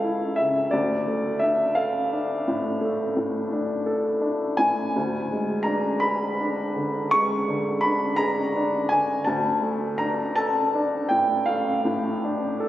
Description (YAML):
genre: classical, romantic nocturne for solo piano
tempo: 53-58 BPM (dotted quarters)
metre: 12/8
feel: rubato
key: D minor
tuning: A4 = 441 Hz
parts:
  - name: warm upright piano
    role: solo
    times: 0.0-12.7 s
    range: C#2 to C#6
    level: -22 LUFS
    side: equal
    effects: none
room: wet church reverb, RT60 2.5 s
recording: recorded on a phone in the room, club reverb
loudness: -22 LUFS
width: side -13 dB against mid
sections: 0.0-12.7 A section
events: none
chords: 0.0 A7/C#; 0.7 Dm; 4.9 Bb7b9/D; 9.3 Dm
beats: | 0.72 1.76 2.81 3.86 | 4.94 6.01 7.11 8.20 | 9.27 10.38 11.49 12.60